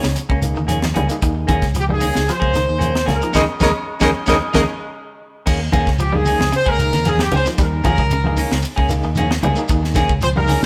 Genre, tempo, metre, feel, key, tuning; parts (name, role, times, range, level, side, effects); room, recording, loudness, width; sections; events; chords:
afrobeat; 113 BPM; 4/4; straight; Eb mixolydian; A4 = 440 Hz
brilliant horn section; melody; 0.0-10.7 s; G4 to Eb5; -25 LUFS; equal
breathy alto saxophone; second line; 0.0-10.6 s; G4 to Db5; -26 LUFS; equal
overdriven reed electric piano; accompaniment; 0.0-10.7 s; Bb3 to Ab4; -30 LUFS; equal; fast tremolo
clean electric guitar; arpeggios; 0.0-10.6 s; Db3 to Ab3; -27 LUFS; equal; spring reverb
semi-hollow electric guitar; stabs; 0.0-10.7 s; Bb3 to Ab4; -27 LUFS; equal
fingered electric bass; bass; 0.0-10.7 s; Db2 to Eb2; -23 LUFS; equal
tight funk drum kit; drums; 0.0-10.7 s; crash cymbal, hi-hat, kick drum, ride cymbal, snare drum; -24 LUFS; equal
shekere; percussion; 0.0-10.7 s; -30 LUFS; equal
congas; percussion; 0.2-10.7 s; -26 LUFS; equal
light reverb; band playing live in one room; -18 LUFS; mono
0.0-5.5 A section; 5.5-10.7 A section
band accent 3.3-5.5; drum fill 4.9-5.5
0.0 Eb7sus4